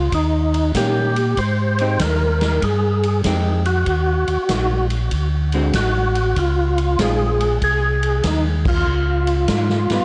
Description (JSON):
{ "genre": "soul jazz organ trio", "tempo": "96 BPM", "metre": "4/4", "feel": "swing 66% on 8ths", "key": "unclear", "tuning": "A4 = 441 Hz", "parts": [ { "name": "percussive tonewheel organ", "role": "melody", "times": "0.0-10.0 s", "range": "Eb4 to C5", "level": "-23 LUFS", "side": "equal", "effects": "slow rotary speaker, overdrive, chorus vibrato, tape echo" }, { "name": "mellow tonewheel organ", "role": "bass", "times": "0.0-10.0 s", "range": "A1 to Bb2", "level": "-22 LUFS", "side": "equal", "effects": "overdrive, slow rotary speaker, transformer saturation" }, { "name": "swinging big-band drum kit", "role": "drums", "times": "0.1-10.0 s", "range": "crash cymbal, hi-hat, kick drum, ride cymbal, snare drum", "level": "-27 LUFS", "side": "equal", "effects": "none" }, { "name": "vintage hollow-body jazz guitar", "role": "accompaniment", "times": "0.8-10.0 s", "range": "D3 to G4", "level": "-26 LUFS", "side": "equal", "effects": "none" } ], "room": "small room ambience", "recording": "dry, gritty hardware recording, transformer saturation, cassette tape, nothing above 10.4 kHz", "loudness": "-19 LUFS", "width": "mono", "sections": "0.0-10.0 A section", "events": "band accent 8.6-8.9", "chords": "0.1 Eb7; 1.4 Abmaj7; 3.9 Ebm; 5.1 D7#11; 6.4 Dbmaj7; 8.9 Db(#11)", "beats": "0.12 0.75 | 1.37 2.00 2.62 3.25 | 3.87 4.50 5.12 5.74 | 6.37 6.99 7.62 8.24 | 8.86 9.49" }